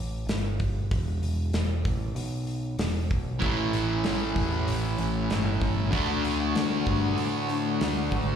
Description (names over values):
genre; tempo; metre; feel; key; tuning
quiet-loud alternative rock; 96 BPM; 4/4; straight; unclear; A4 = 440 Hz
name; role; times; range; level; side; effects
growling picked electric bass; bass; 0.0-8.4 s; E1 to A2; -29 LUFS; right 1 dB; overdrive
big rock drum kit; drums; 0.3-8.3 s; hi-hat, kick drum, snare drum; -31 LUFS; equal; none
electric guitar through a small old amp; arpeggios; 3.4-8.4 s; A2 to F#4; -32 LUFS; right 2 dB; tremolo, slapback echo
fuzz guitar; riff; 3.4-8.4 s; A2 to D4; -27 LUFS; left 1 dB; distortion, slapback echo
room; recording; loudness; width
small room ambience; live gig heard through the venue's PA, club reverb; -25 LUFS; side -8 dB against mid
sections
0.0-8.4 A section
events
none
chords
0.0 A5; 0.9 E5; 3.4 A; 5.9 D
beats
0.29 | 0.92 1.54 2.17 2.80 | 3.43 4.05 4.68 5.31 | 5.94 6.56 7.19 7.82